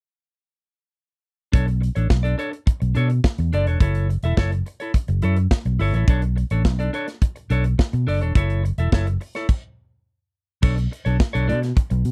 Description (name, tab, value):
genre	disco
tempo	106 BPM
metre	4/4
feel	straight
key	B minor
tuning	A4 = 443 Hz
part	clean electric guitar	accompaniment	1.5-11.9 s	D4 to E5	-30 LUFS	equal	none
part	fingered electric bass	bass	1.5-12.1 s	E1 to B2	-22 LUFS	equal	none
part	modern studio drum kit	drums	1.5-12.1 s	crash cymbal, hi-hat, kick drum, snare drum	-20 LUFS	equal	none
room	little or no reverb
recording	dry, close 1970s-style studio recording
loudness	-21 LUFS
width	mono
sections	1.5-10.6 A section; 10.6-12.1 B section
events	stop 9.5-10.6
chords	1.5 Bm9; 3.8 F#m7; 6.1 Bm9; 8.4 F#m7; 10.6 Bm9